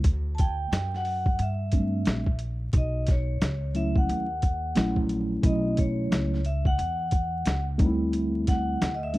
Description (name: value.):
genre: hip hop, jazz-hop.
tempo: 89 BPM.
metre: 4/4.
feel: swing 63% on 16ths.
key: unclear.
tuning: A4 = 440 Hz.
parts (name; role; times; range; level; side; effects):
upright bass; bass; 0.0-9.2 s; Bb1 to G2; -29 LUFS; equal; none.
boom bap sampler-style drum kit; drums; 0.0-9.2 s; hi-hat, kick drum, snare drum; -24 LUFS; equal; none.
vibraphone with medium mallets; melody; 0.3-9.2 s; C#5 to A5; -32 LUFS; equal; none.
mellow tine electric piano; accompaniment; 1.7-9.2 s; F#3 to E4; -27 LUFS; equal; medium stereo tremolo.
room: digital ambience.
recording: dry, close 1970s-style studio recording, vinyl crackle.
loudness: -24 LUFS.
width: side -18 dB against mid.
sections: 0.0-9.2 A section.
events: none.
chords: 0.0 D9sus4; 2.7 B9sus4; 7.8 D9sus4.